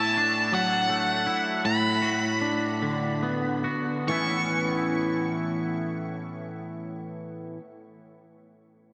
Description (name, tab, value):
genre	rock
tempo	45-56 BPM (dotted quarters)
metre	6/8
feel	straight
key	A major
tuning	A4 = 441 Hz
part	octave-fuzz lead guitar	melody	0.0-7.5 s	F#5 to C#6	-29 LUFS	equal	distortion, delay
part	twangy electric guitar	arpeggios	0.0-7.6 s	A2 to F#4	-30 LUFS	equal	analog chorus, delay
room	wet huge ambient reverb, RT60 5.1 s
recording	dreamy mix soaked in reverb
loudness	-27 LUFS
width	mono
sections	0.0-4.1 A section; 4.1-8.9 B section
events	slowing down 0.0-4.1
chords	0.0 Dadd9/A; 1.6 Bm/A; 4.1 Aadd9